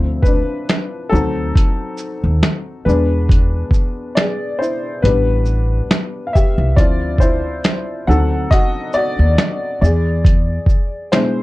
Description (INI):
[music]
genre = lo-fi hip hop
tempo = 69 BPM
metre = 4/4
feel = swing 56% on 16ths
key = unclear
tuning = A4 = 440 Hz
[part]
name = warm upright piano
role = accompaniment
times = 0.0-11.4 s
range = B2 to F#5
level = -19 LUFS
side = left 2 dB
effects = cassette tape, low-pass filter
[part]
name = upright bass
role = bass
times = 0.0-10.6 s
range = A1 to E2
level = -16 LUFS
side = equal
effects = none
[part]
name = lo-fi sampler-style drum kit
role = drums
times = 0.2-11.4 s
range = finger snaps, hi-hat, kick drum, shaker, snare drum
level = -14 LUFS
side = equal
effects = none
[sound]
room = light reverb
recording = dark, warm production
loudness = -14 LUFS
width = side -18 dB against mid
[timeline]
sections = 0.0-11.4 A section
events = upright piano solo 0.0-11.4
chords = 0.0 Dm7; 1.1 D7b9; 2.9 E7; 5.0 A9sus4; 6.8 Dm9; 8.1 D7b9; 9.8 E7